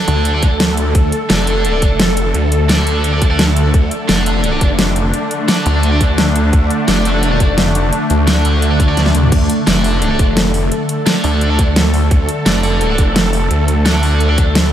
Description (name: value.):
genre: dark technical drum and bass.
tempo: 172 BPM.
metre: 4/4.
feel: straight.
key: D minor.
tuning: A4 = 441 Hz.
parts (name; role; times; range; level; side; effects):
swarming drone; sustained chords; 0.0-14.7 s; D3 to A4; -17 LUFS; equal; built-in reverb, sidechain pumping.
heavy high-gain guitar; stabs; 0.0-14.4 s; D4 to D5; -21 LUFS; right 2 dB; distortion, diffuse ambient delay.
snarling distorted saw bass; bass; 0.1-14.7 s; F1 to D2; -15 LUFS; equal; distortion, sidechain pumping.
dubstep drum kit; drums; 0.1-14.6 s; crash cymbal, hi-hat, snare drum, toms; -18 LUFS; equal; studio reverb.
electronic kick drum; drums; 0.4-14.4 s; none; -13 LUFS; equal; studio reverb.
room: moderate huge ambient reverb, RT60 4.0 s.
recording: dreamy mix soaked in reverb.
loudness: -11 LUFS.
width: side -10 dB against mid.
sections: 0.0-14.7 A section.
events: drum fill 9.0-9.3.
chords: 0.0 D5.